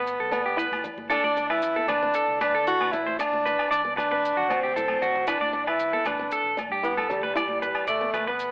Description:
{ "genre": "highlife guitar band", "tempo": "115 BPM", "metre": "4/4", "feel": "straight", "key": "G major", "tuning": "A4 = 440 Hz", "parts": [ { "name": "breathy tenor saxophone", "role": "melody", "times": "0.0-8.5 s", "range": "G3 to F#4", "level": "-25 LUFS", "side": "equal", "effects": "slapback echo" }, { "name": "nylon-string guitar", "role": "accompaniment", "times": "0.0-8.5 s", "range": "B3 to E4", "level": "-37 LUFS", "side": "left 1 dB", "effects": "none" }, { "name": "electric guitar at the edge of break-up", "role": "arpeggios", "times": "0.0-8.5 s", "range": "F#4 to D5", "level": "-26 LUFS", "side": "right 1 dB", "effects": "slapback echo" }, { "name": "fingered electric bass", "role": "bass", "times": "0.0-8.5 s", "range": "E1 to D3", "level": "-48 LUFS", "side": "equal", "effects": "none" }, { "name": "maracas", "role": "percussion", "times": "0.1-8.5 s", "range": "none", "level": "-43 LUFS", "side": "left 2 dB", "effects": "none" }, { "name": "agogo bells", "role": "percussion", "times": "0.3-8.3 s", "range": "none", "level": "-33 LUFS", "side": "left 1 dB", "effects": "none" }, { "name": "congas", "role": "percussion", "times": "0.3-8.3 s", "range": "none", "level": "-43 LUFS", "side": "equal", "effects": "none" } ], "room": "light reverb", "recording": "telephone sound", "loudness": "-22 LUFS", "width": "side -25 dB against mid", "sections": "0.0-8.5 A section", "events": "drum fill 4.8-5.3", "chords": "0.0 G6; 1.1 Dadd9; 5.3 G6", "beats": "0.06 0.58 | 1.10 1.62 2.15 2.67 | 3.19 3.71 4.23 4.75 | 5.28 5.80 6.32 6.84 | 7.36 7.88 8.40" }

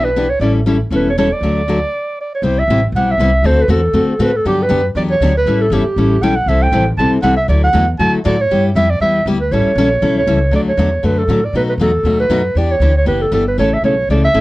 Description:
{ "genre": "acoustic string swing (jazz manouche)", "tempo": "237 BPM", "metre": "4/4", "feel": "swing 56% on 8ths", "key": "D major", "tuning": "A4 = 438 Hz", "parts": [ { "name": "warm clarinet", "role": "melody", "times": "0.0-14.4 s", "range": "G4 to A5", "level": "-16 LUFS", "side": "right 2 dB", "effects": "none" }, { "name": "picked steel-string acoustic guitar", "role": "accompaniment", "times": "0.0-14.4 s", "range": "B2 to A4", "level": "-16 LUFS", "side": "left 2 dB", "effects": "none" }, { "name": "upright bass", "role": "bass", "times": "0.0-14.4 s", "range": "E1 to B2", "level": "-17 LUFS", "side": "equal", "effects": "none" } ], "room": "light reverb", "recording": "worn, warbling old tape, cassette tape, warbly pitch drift", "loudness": "-12 LUFS", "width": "side -18 dB against mid", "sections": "0.0-2.4 A section; 2.4-10.5 B section; 10.5-14.4 A section", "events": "stop 1.9-2.4", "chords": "0.4 A7; 1.4 D; 2.4 Cmaj7; 3.4 D7; 4.5 Gmaj7; 5.5 A7; 6.5 C6; 7.5 Dadd9; 8.5 G6; 9.5 A7; 10.5 D; 11.5 B7; 12.6 Em7; 13.6 A", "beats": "0.15 | 0.40 0.66 0.91 1.16 | 1.42 1.67 1.92 2.18 | 2.43 2.68 2.94 3.19 | 3.44 3.69 3.95 4.20 | 4.46 4.71 4.96 5.21 | 5.47 5.72 5.97 6.23 | 6.48 6.73 6.99 7.24 | 7.49 7.75 8.00 8.25 | 8.50 8.76 9.01 9.26 | 9.52 9.77 10.02 10.28 | 10.53 10.78 11.04 11.29 | 11.54 11.80 12.05 12.31 | 12.56 12.81 13.07 13.32 | 13.58 13.83 14.08 14.34" }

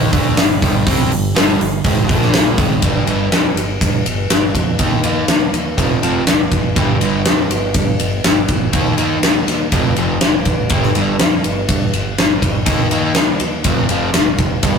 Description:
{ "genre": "hard rock", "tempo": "122 BPM", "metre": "4/4", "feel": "straight", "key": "G minor", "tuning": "A4 = 442 Hz", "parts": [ { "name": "overdriven semi-hollow guitar", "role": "riff", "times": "0.0-14.8 s", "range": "F2 to Eb4", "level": "-18 LUFS", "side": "right 1 dB", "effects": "none" }, { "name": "growling fingered electric bass", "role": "bass", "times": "0.0-14.8 s", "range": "F1 to G2", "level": "-23 LUFS", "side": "equal", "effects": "overdrive" }, { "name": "huge arena drum kit", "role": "drums", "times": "0.1-14.7 s", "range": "hi-hat, kick drum, ride cymbal, snare drum", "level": "-14 LUFS", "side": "equal", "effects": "none" } ], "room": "light reverb", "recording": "rough rehearsal-room recording, tube saturation", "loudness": "-13 LUFS", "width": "side -6 dB against mid", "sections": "0.0-2.8 A section; 2.8-14.8 B section", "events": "none", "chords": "0.0 G5; 2.1 Bb5; 2.6 Ab5; 2.8 G5; 4.8 Eb5; 5.8 F5; 6.8 G5; 8.7 Eb5; 9.7 F; 10.7 G5; 12.7 Eb5; 13.7 F5", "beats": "0.38 | 0.87 1.36 1.85 2.34 | 2.83 3.33 3.82 4.31 | 4.80 5.29 5.78 6.28 | 6.77 7.26 7.75 8.24 | 8.74 9.23 9.72 10.21 | 10.70 11.19 11.69 12.18 | 12.67 13.16 13.65 14.14 | 14.63" }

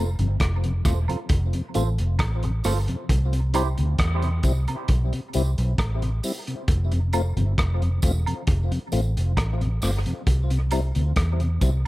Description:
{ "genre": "dub reggae", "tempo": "67 BPM", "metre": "4/4", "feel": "straight", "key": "unclear", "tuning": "A4 = 439 Hz", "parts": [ { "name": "clean electric guitar", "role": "accompaniment", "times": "0.0-3.7 s", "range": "E4 to C5", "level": "-33 LUFS", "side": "right 8 dB", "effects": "low-pass filter, dub echo" }, { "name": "mellow tonewheel organ", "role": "accompaniment", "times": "0.0-11.7 s", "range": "F2 to F4", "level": "-30 LUFS", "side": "left 2 dB", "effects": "overdrive, chorus vibrato, slow rotary speaker, low-pass filter, dub echo" }, { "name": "vintage muted fingered electric bass", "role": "bass", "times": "0.0-11.8 s", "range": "E1 to E2", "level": "-22 LUFS", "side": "equal", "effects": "none" }, { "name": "crunchy breakbeat drum kit", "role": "drums", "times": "0.2-11.8 s", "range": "hi-hat, kick drum, rim click", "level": "-25 LUFS", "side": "equal", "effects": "none" }, { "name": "tambourine and woodblock", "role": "percussion", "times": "0.9-11.9 s", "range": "none", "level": "-34 LUFS", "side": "right 5 dB", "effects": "dub echo" } ], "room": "studio reverb", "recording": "none", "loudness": "-21 LUFS", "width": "side -18 dB against mid", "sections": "0.0-11.9 A section", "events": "none", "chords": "0.0 F; 3.1 C; 6.7 F; 10.3 C", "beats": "0.41 1.30 2.20 | 3.10 3.99 4.89 5.79 | 6.68 7.58 8.47 9.37 | 10.27 11.17" }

